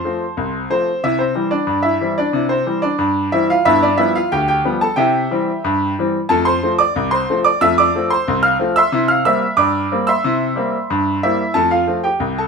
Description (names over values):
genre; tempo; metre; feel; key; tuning
ragtime piano; 91 BPM; 2/4; straight; F major; A4 = 439 Hz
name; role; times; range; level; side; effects
clear grand piano; solo; 0.0-12.5 s; C2 to F6; -14 LUFS; equal; none
room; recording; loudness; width
moderate stone room reverb, RT60 0.9 s; band playing live in one room; -14 LUFS; side -5 dB against mid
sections
0.0-12.5 A section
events
none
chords
0.0 F; 1.0 C; 3.7 G7; 5.0 C; 6.3 F; 8.9 C7; 11.6 F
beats
0.39 | 1.04 1.70 | 2.36 3.01 | 3.67 4.33 | 4.98 5.64 | 6.29 6.95 | 7.61 8.26 | 8.92 9.58 | 10.24 10.90 | 11.56 12.21